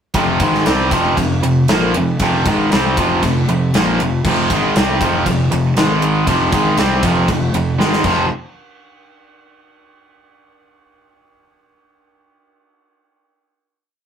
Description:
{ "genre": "hard rock", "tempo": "118 BPM", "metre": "4/4", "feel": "straight", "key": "unclear", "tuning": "A4 = 440 Hz", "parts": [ { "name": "tight distorted guitar", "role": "riff", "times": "0.1-8.3 s", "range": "F2 to C4", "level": "-16 LUFS", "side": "right 2 dB", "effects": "distortion" }, { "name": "fuzz picked electric bass", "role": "bass", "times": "0.1-8.3 s", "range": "F1 to C2", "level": "-21 LUFS", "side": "left 1 dB", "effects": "overdrive" }, { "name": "gated 80s drum kit", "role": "drums", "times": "0.1-8.2 s", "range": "crash cymbal, kick drum, ride cymbal, snare drum", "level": "-19 LUFS", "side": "equal", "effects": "none" }, { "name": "overdriven electric guitar", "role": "riff", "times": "0.2-8.3 s", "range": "F2 to C4", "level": "-21 LUFS", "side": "left 4 dB", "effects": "none" } ], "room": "moderate studio reverb, RT60 0.6 s", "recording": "rough rehearsal-room recording, tube saturation", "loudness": "-13 LUFS", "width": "side -8 dB against mid", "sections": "0.1-8.3 riff; 8.3-10.3 final hit", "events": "drum fill 7.8-8.3", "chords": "0.1 F5; 5.8 Ab5; 6.3 F5; 7.8 Ab5; 8.0 F5; 8.3 N.C." }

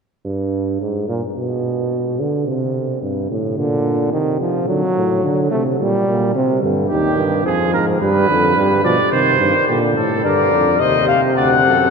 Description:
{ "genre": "classical, imitative canzona for brass ensemble", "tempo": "108 BPM", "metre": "3/4", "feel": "straight", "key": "C minor", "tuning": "A4 = 440 Hz", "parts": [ { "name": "mellow bass trombone", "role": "bass", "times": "0.3-11.9 s", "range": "D2 to D3", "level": "-19 LUFS", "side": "right 2 dB", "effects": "none" }, { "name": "warm trombone", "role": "accompaniment", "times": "3.6-11.9 s", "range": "C3 to A3", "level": "-18 LUFS", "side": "right 1 dB", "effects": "none" }, { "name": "mellow trumpet", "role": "second line", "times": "6.9-11.9 s", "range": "G4 to D5", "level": "-18 LUFS", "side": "right 3 dB", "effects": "none" }, { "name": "mellow trumpet", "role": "melody", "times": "10.2-11.9 s", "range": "D5 to F#5", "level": "-15 LUFS", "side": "left 10 dB", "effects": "none" } ], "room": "wet cathedral reverb, RT60 6.3 s", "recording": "none", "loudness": "-15 LUFS", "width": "side -5 dB against mid", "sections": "0.0-11.9 A section", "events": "none", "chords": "0.0 N.C.; 0.8 Absus2; 1.4 Bm; 2.5 N.C.; 3.0 Gm; 4.1 Cm; 4.7 D; 5.8 Gm/Bb; 6.3 Cm; 7.5 Fm; 8.0 G; 9.1 Cm; 9.7 Gm; 10.8 Cm/Eb; 11.4 D" }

